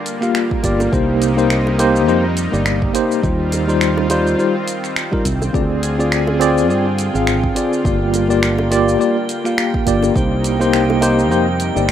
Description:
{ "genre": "sunset chillout", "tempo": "104 BPM", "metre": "4/4", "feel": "swing 56% on 16ths", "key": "C minor", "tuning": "A4 = 440 Hz", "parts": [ { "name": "lush unison pad", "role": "sustained chords", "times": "0.0-11.9 s", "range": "C3 to Ab4", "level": "-24 LUFS", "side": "equal", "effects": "chorus" }, { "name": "deep house drum kit", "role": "drums", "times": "0.1-11.9 s", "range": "finger snaps, hi-hat, shaker", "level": "-24 LUFS", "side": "right 1 dB", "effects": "none" }, { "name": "bright tine electric piano", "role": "accompaniment", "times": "0.2-11.9 s", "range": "G3 to F5", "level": "-16 LUFS", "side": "left 1 dB", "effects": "medium stereo tremolo, auto-pan, digital delay" }, { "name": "electronic kick drum", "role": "drums", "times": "0.5-10.3 s", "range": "none", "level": "-21 LUFS", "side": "equal", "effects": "none" }, { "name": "fretless electric bass", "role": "bass", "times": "0.6-11.9 s", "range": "G1 to G2", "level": "-20 LUFS", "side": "right 1 dB", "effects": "lush chorus" }, { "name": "bongos", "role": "percussion", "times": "0.8-11.2 s", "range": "none", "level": "-27 LUFS", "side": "right 2 dB", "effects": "none" }, { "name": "drifting glass-harmonics texture", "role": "texture", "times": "5.9-11.9 s", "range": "G5", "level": "-28 LUFS", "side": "right 6 dB", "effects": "chorus, built-in reverb" } ], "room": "light reverb, digital ambience", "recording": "rough home demo mix", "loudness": "-14 LUFS", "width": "side -10 dB against mid", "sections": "0.0-11.9 A section", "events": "none", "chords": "0.0 Gm7; 0.9 Cm7; 3.2 Eb69; 5.5 Dm7b5; 7.8 Gm7; 10.2 Cm7" }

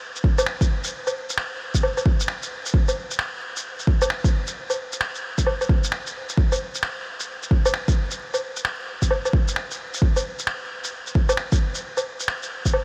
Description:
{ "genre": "future garage", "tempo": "132 BPM", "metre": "4/4", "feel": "swing 63% on 16ths", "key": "none", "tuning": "none", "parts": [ { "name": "electronic kick drum", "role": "drums", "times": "0.2-12.7 s", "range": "none", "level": "-22 LUFS", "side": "equal", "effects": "overdrive" }, { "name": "electronic shaker, woodblock and finger snaps", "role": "drums", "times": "0.2-12.8 s", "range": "none", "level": "-28 LUFS", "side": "equal", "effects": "none" } ], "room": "moderate huge ambient reverb, RT60 7.5 s", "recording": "dreamy mix soaked in reverb, vinyl crackle", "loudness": "-24 LUFS", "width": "mono", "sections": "0.0-12.8 A section", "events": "none", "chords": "none" }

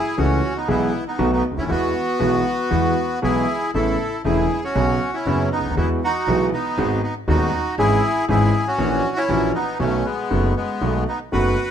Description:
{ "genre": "tango", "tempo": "119 BPM", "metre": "4/4", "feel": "rubato", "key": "E major", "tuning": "A4 = 439 Hz", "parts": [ { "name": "bandoneon", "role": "melody", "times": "0.0-11.7 s", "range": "G#3 to B4", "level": "-22 LUFS", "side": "equal", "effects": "none" }, { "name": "warm concert grand piano", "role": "accompaniment", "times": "0.2-11.5 s", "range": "D#1 to G#4", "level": "-21 LUFS", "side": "equal", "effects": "none" }, { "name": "upright bass", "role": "bass", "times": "0.2-11.5 s", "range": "E1 to E2", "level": "-25 LUFS", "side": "right 1 dB", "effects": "none" } ], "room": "moderate large studio reverb, RT60 1.0 s", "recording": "minimal, uncompressed stereo recording", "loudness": "-18 LUFS", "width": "side -8 dB against mid", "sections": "0.0-11.7 A section", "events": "none", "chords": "0.0 F#m7; 0.7 E/B; 1.2 B7; 1.7 Eadd9; 3.7 Aadd9; 4.8 Bsus2; 5.8 Eadd9; 6.8 G#m7; 7.8 C#m/G#; 8.8 F#7/A#; 9.8 B7" }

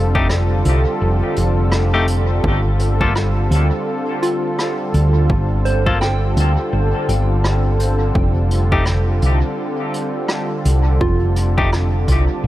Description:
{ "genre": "ambient dub", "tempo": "84 BPM", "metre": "4/4", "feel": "swing 59% on 16ths", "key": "unclear", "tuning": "A4 = 441 Hz", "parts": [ { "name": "warm analog pad", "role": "sustained chords", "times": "0.0-12.5 s", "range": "D3 to A4", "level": "-22 LUFS", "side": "right 1 dB", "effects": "chorus" }, { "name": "hollow-body short-scale fingered electric bass", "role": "bass", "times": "0.0-12.5 s", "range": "F1 to D2", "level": "-16 LUFS", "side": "equal", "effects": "tube saturation" }, { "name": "semi-hollow electric guitar", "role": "stabs", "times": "0.1-11.7 s", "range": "A3 to A4", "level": "-25 LUFS", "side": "left 3 dB", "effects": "dub echo" }, { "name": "electronic kick drum", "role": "drums", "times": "0.2-12.3 s", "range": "none", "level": "-21 LUFS", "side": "equal", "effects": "overdrive" }, { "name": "vintage brush drum kit", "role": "drums", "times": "0.3-12.2 s", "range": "hi-hat, rim click", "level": "-27 LUFS", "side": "equal", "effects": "dub echo" }, { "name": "soft synth bell", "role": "arpeggios", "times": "4.2-12.5 s", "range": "F4 to G5", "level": "-26 LUFS", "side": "right 1 dB", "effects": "chorus, phaser, dub echo" } ], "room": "small room reverb", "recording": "none", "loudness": "-15 LUFS", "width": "side -15 dB against mid", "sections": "0.0-12.5 A section", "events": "none", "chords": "0.0 F; 2.4 G7(no3); 8.2 F" }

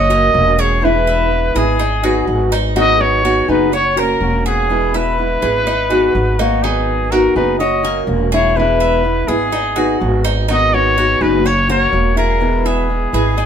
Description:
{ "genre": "latin", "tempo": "124 BPM", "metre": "4/4", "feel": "straight", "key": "G# minor", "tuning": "A4 = 441 Hz", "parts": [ { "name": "breathy trumpet", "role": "melody", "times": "0.0-13.5 s", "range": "F#4 to D#5", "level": "-17 LUFS", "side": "equal", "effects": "none" }, { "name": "flamenco guitar", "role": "second line", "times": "0.0-13.5 s", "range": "A#3 to F#4", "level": "-21 LUFS", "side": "left 3 dB", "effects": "none" }, { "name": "Cuban tres", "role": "arpeggios", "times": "0.0-13.5 s", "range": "D#4 to E5", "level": "-20 LUFS", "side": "right 2 dB", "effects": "none" }, { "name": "upright bass", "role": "bass", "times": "0.0-13.5 s", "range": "E1 to G#1", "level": "-19 LUFS", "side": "equal", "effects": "none" }, { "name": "fingerpicked acoustic archtop guitar", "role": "accompaniment", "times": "0.1-13.4 s", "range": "B2 to G#4", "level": "-20 LUFS", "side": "equal", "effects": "none" } ], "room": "moderate studio reverb, RT60 0.6 s", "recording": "minimal, uncompressed stereo recording", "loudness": "-12 LUFS", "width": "side -8 dB against mid", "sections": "0.0-13.5 A section", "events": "none", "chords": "0.0 F#; 0.8 E; 1.8 G#m7; 3.7 F#; 4.7 E; 5.7 G#m7; 7.6 F#; 8.6 E; 9.5 G#m7; 11.5 F#; 12.4 E" }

